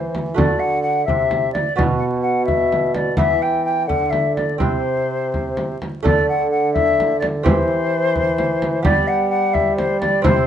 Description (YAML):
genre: classical, renaissance-style consort dance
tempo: 85 BPM (dotted quarters)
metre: 6/8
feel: straight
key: D mixolydian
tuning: A4 = 440 Hz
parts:
  - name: mellow hollow silver concert flute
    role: melody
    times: 0.0-10.5 s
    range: C5 to G5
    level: -20 LUFS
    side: left 3 dB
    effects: none
  - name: lute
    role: accompaniment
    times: 0.0-10.5 s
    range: B2 to A4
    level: -25 LUFS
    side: right 4 dB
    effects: none
  - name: mellow bassoon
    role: bass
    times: 0.0-10.5 s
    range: B2 to G3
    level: -22 LUFS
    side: right 1 dB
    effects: none
  - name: frame drum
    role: percussion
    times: 0.1-10.5 s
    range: none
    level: -21 LUFS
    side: equal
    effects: none
room: light reverb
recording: vinyl crackle, nothing above 10.5 kHz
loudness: -16 LUFS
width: side -9 dB against mid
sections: 0.0-6.0 A section; 6.0-10.5 A section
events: none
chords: 0.4 D; 1.8 B5; 3.2 E5; 4.6 C; 6.0 D5; 7.5 C/E; 8.9 G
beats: | 0.37 1.07 | 1.77 2.48 | 3.18 3.89 | 4.61 5.32 | 6.04 6.75 | 7.45 8.15 | 8.86 9.56 | 10.26